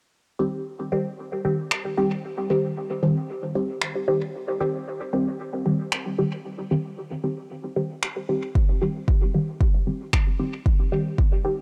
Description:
dub techno; 114 BPM; 4/4; swing 56% on 16ths; C minor; A4 = 440 Hz
filtered dub chord stab; stabs; 0.4-11.6 s; Eb3 to G4; -27 LUFS; equal; phaser, sidechain pumping, dub echo
electronic finger snaps; drums; 1.7-10.2 s; -28 LUFS; equal; overdrive, dub echo
electronic kick drum; drums; 8.6-11.3 s; -23 LUFS; equal; overdrive
little or no reverb; dry, gritty hardware recording, transformer saturation, cassette tape; -25 LUFS; mono
0.1-11.6 A section
filter sweep on synth stab 0.1-11.6
0.1 Cm

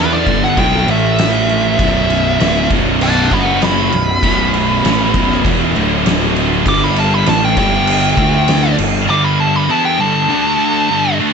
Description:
stoner and doom metal; 99 BPM; 4/4; straight; B minor; A4 = 440 Hz
fuzz lead guitar; melody; 0.0-11.2 s; B4 to D6; -17 LUFS; equal; wah, distortion, tape echo
bowed-like drone; sustained chords; 0.0-11.3 s; G3 to E5; -29 LUFS; right 1 dB
scooped high-gain guitar; riff; 0.0-11.3 s; B1 to E4; -19 LUFS; equal; distortion
thick fuzz guitar; riff; 0.0-11.3 s; B1 to E4; -20 LUFS; left 12 dB; distortion
thick fuzz guitar; riff; 0.0-11.3 s; B1 to E4; -19 LUFS; right 11 dB; distortion
fuzz picked electric bass; bass; 0.0-9.1 s; B0 to E2; -19 LUFS; equal; overdrive, tube saturation
oversized low-tuned drum kit; drums; 0.3-8.9 s; crash cymbal, kick drum, snare drum; -18 LUFS; equal
light reverb, studio ambience; nothing above 8.0 kHz; -11 LUFS; side -6 dB against mid
0.0-11.3 A section
lead electric guitar solo 0.0-11.3
0.0 G5; 0.9 A5; 1.8 Bm; 3.3 F#5; 3.9 B5; 5.8 D5; 6.7 G5; 8.2 D5; 8.8 G5; 10.3 D5

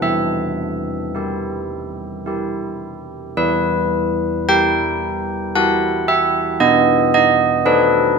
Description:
classical, tune for church bells; 53-57 BPM; 3/4; straight; E minor; A4 = 438 Hz
carillon bells; solo; 0.0-8.2 s; E3 to G5; -16 LUFS; right 1 dB
moderate recital hall reverb, RT60 1.7 s; close, detailed microphones; -15 LUFS; side -5 dB against mid
0.0-3.4 A section; 3.4-8.2 A section
0.0 Em; 6.6 B7

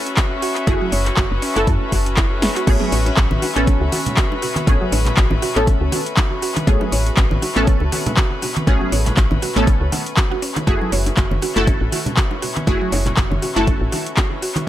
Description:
deep house; 120 BPM; 4/4; swing 56% on 16ths; F# minor; A4 = 440 Hz
filtered dub chord stab; stabs; 0.0-14.6 s; A3 to A4; -23 LUFS; equal; ensemble chorus, sidechain pumping, analog delay
rich chamber string section; texture; 0.0-14.7 s; C#4 to E5; -26 LUFS; left 3 dB; sidechain pumping
deep house drum kit; drums; 0.1-14.7 s; crash cymbal, handclaps, hi-hat, snare drum; -23 LUFS; equal; overdrive, analog delay
mallet-like synth pluck; arpeggios; 0.2-14.5 s; F#3 to F#5; -27 LUFS; right 3 dB; chorus, sidechain pumping, analog delay
electronic kick drum; drums; 0.2-14.3 s; -18 LUFS; equal; overdrive
woody FM bass; bass; 0.7-13.9 s; F#1 to F#2; -21 LUFS; equal; sidechain pumping
bongos and congas; percussion; 2.8-14.7 s; -27 LUFS; right 1 dB; analog delay
little or no reverb; echo-heavy mix; -15 LUFS; side -13 dB against mid
0.0-14.7 A section
drum fill 2.4
0.0 F#m9; 2.7 Amaj9; 10.4 F#m9

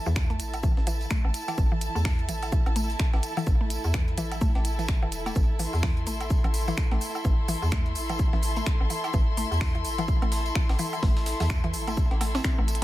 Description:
minimal techno; 127 BPM; 4/4; swing 59% on 16ths; A minor; A4 = 440 Hz
dark chamber string section; texture; 0.0-12.8 s; E4 to C6; -33 LUFS; left 1 dB; sidechain pumping
mallet-like synth pluck; riff; 0.1-12.6 s; E3 to C4; -34 LUFS; left 1 dB; chorus, vintage 12-bit sampler grit, sidechain pumping, tape echo
hollow knocking FM bass; bass; 0.1-12.8 s; E1 to E2; -28 LUFS; equal; sidechain pumping
tambourine; percussion; 0.1-12.8 s; -41 LUFS; right 4 dB
breakbeat sampler-style drum kit; drums; 0.2-12.8 s; hi-hat, shaker, snare drum; -44 LUFS; equal
electronic kick drum; drums; 0.2-12.6 s; -25 LUFS; equal
minimal click drum kit; drums; 0.2-12.8 s; finger snaps, hi-hat; -35 LUFS; equal
woodblock and cowbell; percussion; 0.5-12.7 s; -39 LUFS; right 2 dB; overdrive, tape echo
little or no reverb; -24 LUFS; side -15 dB against mid
0.0-12.8 A section
drum fill 12.7
0.0 A5

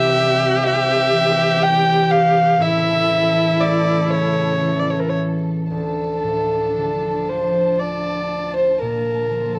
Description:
celtic folk, Celtic slow air; 54-63 BPM; 3/4; rubato; D minor; A4 = 439 Hz
dark fiddle; melody; 0.0-9.6 s; A4 to G5; -20 LUFS; equal; cassette tape
clear viola; second line; 0.0-5.2 s; E4 to G4; -24 LUFS; equal; cassette tape
concert harp; accompaniment; 0.0-9.6 s; A1 to E4; -25 LUFS; equal; cassette tape
warm symphonic string section; sustained chords; 0.0-9.6 s; C#3 to A5; -31 LUFS; equal; cassette tape
wet booth ambience, RT60 0.2 s; home recording on cassette, vinyl crackle; -18 LUFS; mono
0.0-5.7 A section; 5.7-9.6 B section
0.0 C; 2.6 A; 5.7 Dm; 8.8 Bbmaj7

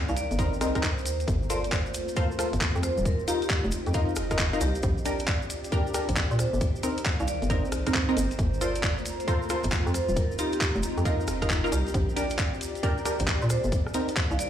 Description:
UK garage, two-step garage; 135 BPM; 4/4; swing 65% on 16ths; A4 = 440 Hz
soft string machine; sustained chords; 0.0-14.5 s; A3 to G4; -39 LUFS; equal; ensemble chorus, sidechain pumping
warbly tape-like pad; texture; 0.0-14.5 s; Eb3 to Bb5; -37 LUFS; left 1 dB; chorus, built-in reverb, phaser, sidechain pumping
vibraphone with hard mallets; melody; 0.1-14.5 s; G4 to F5; -34 LUFS; right 2 dB; ping-pong delay
hollow knocking FM bass; bass; 0.1-14.4 s; Eb1 to Bb2; -29 LUFS; equal; tube saturation
maracas; percussion; 0.1-14.5 s; -40 LUFS; right 1 dB
garage drum kit; drums; 0.2-14.5 s; handclaps, hi-hat, rim click; -32 LUFS; equal
punchy chord stab; stabs; 0.4-14.1 s; C4 to C5; -31 LUFS; equal; chorus, phaser, ping-pong delay
electronic kick drum; drums; 0.4-14.3 s; -27 LUFS; equal
light reverb, digital ambience; played on a big sound system in a bare room, large studio reverb; -24 LUFS; side -10 dB against mid
0.0-14.5 A section
0.0 Cm7; 1.3 Gm11; 2.8 F7sus4; 4.8 Bb6; 6.6 Cm7; 8.4 Gm11; 9.9 F7sus4; 11.9 Bb6; 13.7 Cm7

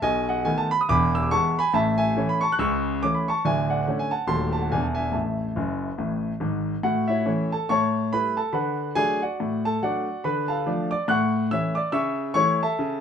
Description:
jazz, stride piano; 141 BPM; 4/4; swing 60% on 8ths; A major; A4 = 441 Hz
warm grand piano; solo; 0.0-13.0 s; D1 to F#6; -22 LUFS; equal
moderate club reverb, RT60 0.7 s; minimal, uncompressed stereo recording; -22 LUFS; side -8 dB against mid
0.0-6.8 A section; 6.8-13.0 A section
grand piano fill 5.6-6.8
0.0 B7; 0.9 E; 1.7 A; 2.6 A/C#; 3.4 Dmaj7; 4.3 D#dim7; 4.7 E7; 5.1 A5; 6.8 A; 7.7 A7; 8.5 D6; 10.2 Dm; 11.1 A; 11.9 A/C#

